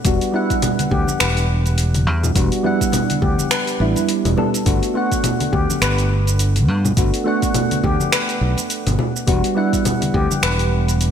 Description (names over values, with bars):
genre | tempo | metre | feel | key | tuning
sunset chillout | 104 BPM | 4/4 | swing 58% on 16ths | unclear | A4 = 440 Hz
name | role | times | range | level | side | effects
soft electric-piano-like synth keys | accompaniment | 0.0-11.1 s | G3 to F#5 | -21 LUFS | moving between left 4 dB and right 5 dB | chorus, auto-pan, ping-pong delay
deep house drum kit | drums | 0.0-11.1 s | congas, finger snaps, hi-hat, shaker | -22 LUFS | equal | overdrive, gated reverb
electronic kick drum | drums | 0.0-10.3 s | none | -22 LUFS | equal | overdrive
modern bright fingered electric bass | bass | 0.1-11.1 s | E1 to G2 | -18 LUFS | equal | none
steel pan | arpeggios | 0.3-10.7 s | E4 to B4 | -26 LUFS | left 3 dB | ping-pong delay
congas | percussion | 0.6-10.4 s | none | -28 LUFS | left 3 dB | none
room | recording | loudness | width
moderate lush hall reverb, RT60 2.2 s | bright 1980s-style digital production | -16 LUFS | side -8 dB against mid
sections
0.0-11.1 A section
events
none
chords
0.1 Em7; 4.7 Gmaj7; 9.3 Em7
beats
| 0.05 0.63 1.20 1.78 | 2.36 2.94 3.51 4.09 | 4.67 5.24 5.82 6.40 | 6.97 7.55 8.13 8.70 | 9.28 9.86 10.44 11.01